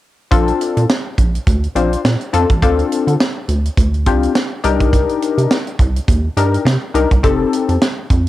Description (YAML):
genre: early-eighties boogie funk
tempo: 104 BPM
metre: 4/4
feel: swing 56% on 16ths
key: unclear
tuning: A4 = 443 Hz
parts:
  - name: funky polysynth comp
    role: accompaniment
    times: 0.3-7.8 s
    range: C4 to C5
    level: -17 LUFS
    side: left 6 dB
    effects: chorus
  - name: rubbery square bass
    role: bass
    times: 0.3-8.3 s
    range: F1 to D3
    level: -16 LUFS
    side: right 1 dB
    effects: none
  - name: tight funk drum kit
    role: drums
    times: 0.3-8.3 s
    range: hi-hat, kick drum, snare drum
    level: -16 LUFS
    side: right 1 dB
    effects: cassette tape
room: light reverb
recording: home recording on cassette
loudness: -13 LUFS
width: side -15 dB against mid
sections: 0.3-8.3 A section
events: none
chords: 0.3 Bbmaj7; 2.6 Dm7; 4.6 Cm7; 7.2 F7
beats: | 0.32 0.89 1.47 2.05 | 2.62 3.20 3.78 4.35 | 4.93 5.51 6.08 6.66 | 7.24 7.82